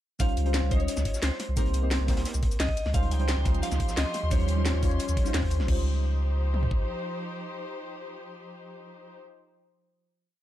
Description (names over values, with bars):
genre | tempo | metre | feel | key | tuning
liquid drum and bass | 175 BPM | 4/4 | straight | Db lydian | A4 = 441 Hz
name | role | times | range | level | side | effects
electric guitar at the edge of break-up | melody | 0.2-5.3 s | Bb4 to G5 | -36 LUFS | equal | ping-pong delay
deep mellow chord stab | accompaniment | 0.2-10.4 s | G3 to Eb5 | -34 LUFS | equal | chorus, phaser, digital delay
crunchy breakbeat drum kit | drums | 0.2-5.7 s | hi-hat, snare drum | -43 LUFS | equal | high-pass filter on hats, high-pass filter on snare, high-pass filter on room
drum and bass drum kit | drums | 0.2-6.8 s | kick drum, toms | -27 LUFS | equal | none
drum and bass drum kit | drums | 0.2-5.8 s | crash cymbal, hi-hat, shaker, snare drum | -33 LUFS | left 1 dB | none
warm sub bass | bass | 0.4-6.7 s | Bb1 to Eb2 | -26 LUFS | equal | none
dark chamber string section | sustained chords | 2.9-9.2 s | F3 to C6 | -37 LUFS | left 2 dB | none
room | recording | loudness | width
digital ambience | dark, warm production | -24 LUFS | side -13 dB against mid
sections
0.2-5.7 drop; 5.7-8.4 final chord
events
drop 0.2-5.7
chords
0.2 Dbmaj9#11; 1.6 Cm7; 2.8 Dbmaj9#11; 4.1 Eb13; 5.7 Dbmaj9#11